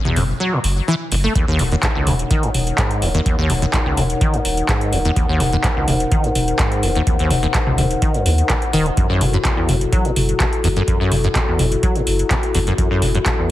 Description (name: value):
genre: acid house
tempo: 126 BPM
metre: 4/4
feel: straight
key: Eb dorian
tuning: A4 = 441 Hz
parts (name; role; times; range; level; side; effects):
- acid bass, saw; riff; 0.1-13.5 s; Gb1 to A3; -20 LUFS; equal; tube saturation, ensemble chorus, cassette tape, ping-pong delay
- booming analog drum machine; drums; 0.1-13.4 s; handclaps, hi-hat, toms; -21 LUFS; left 1 dB; overdrive
- saturated sub bass; bass; 0.2-13.2 s; Eb1 to Eb2; -21 LUFS; equal; sidechain pumping
- dark analog pad; sustained chords; 1.4-13.5 s; Eb4 to Gb5; -23 LUFS; left 2 dB; chorus, sidechain pumping
- electronic kick drum; drums; 1.4-13.4 s; none; -20 LUFS; equal; overdrive
room: light reverb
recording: heavily compressed radio sound, multiband compression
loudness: -15 LUFS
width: side -14 dB against mid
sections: 0.0-13.5 A section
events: kick drops out 0.4-1.4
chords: 0.0 Gb7(no3); 1.4 Ebm7; 9.0 Gbm7